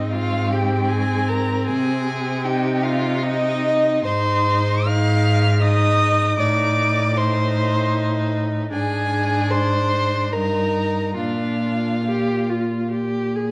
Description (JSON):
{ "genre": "classical, slow romantic movement for string quartet", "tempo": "76 BPM", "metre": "3/4", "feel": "uneven beats, rubato", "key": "Ab major", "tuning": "A4 = 439 Hz", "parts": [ { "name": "rich violin", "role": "melody", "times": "0.0-12.9 s", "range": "Eb5 to F6", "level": "-26 LUFS", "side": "equal", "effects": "none" }, { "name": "rich violin", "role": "second line", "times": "0.0-12.9 s", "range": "Eb4 to F5", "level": "-28 LUFS", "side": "equal", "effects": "none" }, { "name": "clear viola", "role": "accompaniment", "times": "0.0-13.5 s", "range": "C4 to Ab4", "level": "-28 LUFS", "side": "equal", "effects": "none" }, { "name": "rich cello", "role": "bass", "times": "0.0-13.5 s", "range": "G2 to C3", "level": "-24 LUFS", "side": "equal", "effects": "none" } ], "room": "moderate recital hall reverb, RT60 1.4 s", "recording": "worn, warbling old tape, cassette tape, warbly pitch drift", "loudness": "-20 LUFS", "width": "mono", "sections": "0.0-13.5 A section", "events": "none", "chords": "0.0 Ab; 1.7 Ab/C; 4.1 Fm7/Ab; 6.4 Cm69/A; 8.7 Ab; 10.3 Eb/G; 11.2 Bb" }